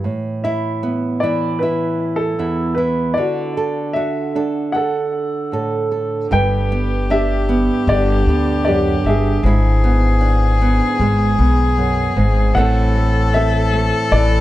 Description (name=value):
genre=acoustic folk-pop ballad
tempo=77 BPM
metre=4/4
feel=straight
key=G major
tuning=A4 = 440 Hz
part: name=nylon-string guitar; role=accompaniment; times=0.0-14.4 s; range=E2 to A4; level=-19 LUFS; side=right 3 dB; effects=plate reverb
part: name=warm upright piano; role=melody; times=0.4-14.4 s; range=E4 to G5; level=-21 LUFS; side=left 1 dB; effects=plate reverb
part: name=warm cello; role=second line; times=6.3-14.4 s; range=G4 to A4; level=-22 LUFS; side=left 5 dB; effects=plate reverb
part: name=upright bass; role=bass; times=6.3-14.4 s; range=G1 to D2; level=-17 LUFS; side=equal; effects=none
room=moderate small room reverb, RT60 0.5 s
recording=dark, warm production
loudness=-15 LUFS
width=side -15 dB against mid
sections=0.0-6.3 A section; 6.3-14.4 B section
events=none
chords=0.0 Asus2; 3.2 Dadd9; 6.3 G; 9.4 E7/G#; 12.6 Am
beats=| 0.04 0.82 1.61 2.39 | 3.17 3.95 4.74 5.53 | 6.31 7.09 7.88 8.66 | 9.44 10.22 11.00 11.78 | 12.56 13.34 14.12